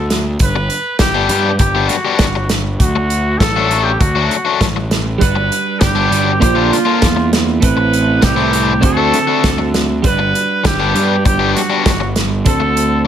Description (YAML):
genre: indie rock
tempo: 99 BPM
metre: 4/4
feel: straight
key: G major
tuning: A4 = 439 Hz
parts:
  - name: breathy trumpet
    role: melody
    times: 0.0-13.0 s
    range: F4 to B4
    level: -18 LUFS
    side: equal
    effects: slapback echo
  - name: fuzz picked electric bass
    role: bass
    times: 0.0-13.0 s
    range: G1 to G2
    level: -18 LUFS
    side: equal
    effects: overdrive
  - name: loose indie drum kit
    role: drums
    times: 0.1-12.9 s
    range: hi-hat, kick drum, snare drum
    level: -16 LUFS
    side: equal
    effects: none
  - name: distorted electric guitar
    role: riff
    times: 0.6-13.1 s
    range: D3 to G4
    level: -19 LUFS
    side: left 9 dB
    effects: overdrive
  - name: twelve-string electric guitar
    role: riff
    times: 5.2-13.1 s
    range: A2 to C5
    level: -18 LUFS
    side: right 5 dB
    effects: wide subtle chorus
room: light reverb, studio ambience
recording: none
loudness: -12 LUFS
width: side -9 dB against mid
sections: 0.0-13.1 A section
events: none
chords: 0.4 Gmaj7; 2.8 D; 5.2 Gmaj7; 6.4 Bbadd9; 7.6 Amadd9; 8.8 D7; 10.0 Gmaj7; 12.5 D7